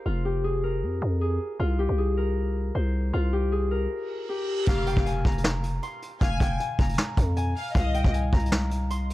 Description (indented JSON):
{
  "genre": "hip hop, trap",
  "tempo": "156 BPM",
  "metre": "4/4",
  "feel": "half-time",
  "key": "F minor",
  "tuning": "A4 = 440 Hz",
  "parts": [
    { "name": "Celtic harp", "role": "melody", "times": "0.0-9.1 s", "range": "F4 to C6", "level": "-30 LUFS", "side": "left 2 dB", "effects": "low-pass filter" },
    { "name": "growling 808-style bass", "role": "bass", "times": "0.1-9.1 s", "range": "F1 to F2", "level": "-26 LUFS", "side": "equal", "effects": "none" },
    { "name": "reverse cymbal", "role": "sound effects", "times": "4.1-4.7 s", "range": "none", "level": "-38 LUFS", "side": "right 7 dB", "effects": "none" },
    { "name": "warm studio violin section", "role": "second line", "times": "4.7-8.1 s", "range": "Eb5 to Ab5", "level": "-37 LUFS", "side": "left 2 dB", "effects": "tape echo" },
    { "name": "vintage brush drum kit", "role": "drums", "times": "4.7-9.1 s", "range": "crash cymbal, hi-hat, kick drum, snare drum", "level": "-25 LUFS", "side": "equal", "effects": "none" }
  ],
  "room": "studio reverb",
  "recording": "dark, warm production",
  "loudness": "-23 LUFS",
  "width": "side -16 dB against mid",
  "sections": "0.0-4.7 A section; 4.7-9.1 B section",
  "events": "break 3.9-4.7; reverse cymbal 4.1-4.7",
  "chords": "0.0 Fm; 1.6 C5; 4.7 Fm; 7.8 Cm",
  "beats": "| 0.06 0.44 0.83 1.21 | 1.60 1.98 2.37 2.75 | 3.13 3.52 3.90 4.29 | 4.67 5.06 5.44 5.83 | 6.21 6.60 6.98 7.37 | 7.75 8.13 8.52 8.90"
}